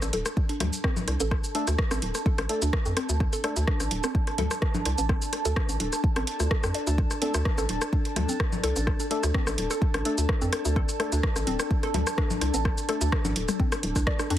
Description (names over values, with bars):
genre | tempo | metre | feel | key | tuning
minimal techno | 127 BPM | 4/4 | straight | unclear | A4 = 440 Hz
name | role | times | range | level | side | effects
hollow knocking FM bass | bass | 0.0-14.4 s | D1 to F2 | -28 LUFS | equal | sidechain pumping
booming analog drum machine | drums | 0.0-14.4 s | hi-hat, rim click, shaker | -32 LUFS | right 1 dB | none
organic electronic drum kit | percussion | 0.0-14.3 s | congas, rim click, toms | -33 LUFS | left 3 dB | dub echo
warbly tape-like pad | texture | 0.1-14.4 s | D4 to A5 | -33 LUFS | equal | chorus, built-in reverb, phaser, sidechain pumping
hollow square pluck | riff | 0.1-14.3 s | C4 to D5 | -35 LUFS | equal | chorus, sidechain pumping, dub echo
electronic kick drum | drums | 0.4-14.2 s | none | -26 LUFS | equal | none
percussive organ stab | stabs | 1.5-3.6, 7.2-13.0 s | A3 to A4 | -35 LUFS | left 1 dB | ensemble chorus, dub echo
room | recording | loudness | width
little or no reverb | heavily compressed radio sound, multiband compression | -24 LUFS | side -12 dB against mid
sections
0.0-14.4 A section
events
none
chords
0.0 D5